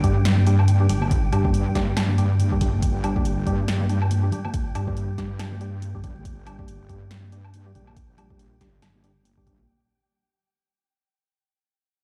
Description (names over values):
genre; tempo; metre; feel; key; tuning
deep dubstep; 140 BPM; 4/4; swing 57% on 16ths, half-time; G minor; A4 = 439 Hz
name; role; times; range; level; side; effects
dark analog pad; sustained chords; 0.0-9.7 s; G3 to F4; -38 LUFS; equal; none
percussive organ stab; stabs; 0.0-9.6 s; G3 to G4; -33 LUFS; equal; chorus, dub echo
wobble bass; bass; 0.0-9.7 s; G1 to G2; -24 LUFS; equal; chorus
deep house drum kit; drums; 0.0-9.6 s; hi-hat, snare drum, woodblock; -32 LUFS; equal; overdrive
electronic kick drum; drums; 0.0-9.6 s; none; -28 LUFS; equal; overdrive
wind-like tuned noise texture; texture; 0.0-9.7 s; G5; -43 LUFS; equal; built-in reverb
congas; percussion; 0.4-9.7 s; none; -35 LUFS; equal; dub echo
room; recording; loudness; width
little or no reverb; played on a big sound system in a bare room, stone room reverb; -22 LUFS; mono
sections
0.0-9.7 A section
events
fade-out 0.0-9.7; filter sweep on synth stab 0.0-9.7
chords
0.0 G5